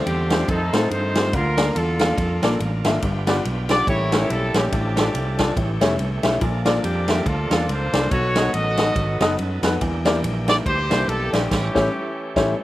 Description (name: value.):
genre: uptempo gospel.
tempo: 142 BPM.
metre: 4/4.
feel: swing 57% on 8ths.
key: unclear.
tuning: A4 = 440 Hz.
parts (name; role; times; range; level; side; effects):
warm upright piano; accompaniment; 0.0-12.5 s; G2 to F5; -24 LUFS; left 2 dB; none.
bright tonewheel organ; sustained chords; 0.0-12.6 s; D3 to A4; -31 LUFS; right 1 dB; slow rotary speaker, overdrive.
warm horn section; melody; 0.1-12.6 s; C4 to D#5; -24 LUFS; equal; slapback echo.
fingered electric bass; bass; 0.1-12.5 s; F1 to A2; -24 LUFS; right 1 dB; none.
swinging big-band drum kit; drums; 0.1-12.5 s; crash cymbal, kick drum, ride cymbal, snare drum; -24 LUFS; right 1 dB; none.
room: little or no reverb.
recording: none.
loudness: -18 LUFS.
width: side -15 dB against mid.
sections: 0.0-12.6 A section.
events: band accent 11.5-12.6.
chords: 0.5 F7; 1.3 Bbmaj7/D; 3.0 G7; 3.9 A7b9; 4.7 Dm/A; 5.6 A7; 6.4 Bbmaj7; 8.1 B7; 9.8 Em7b5; 11.5 A7.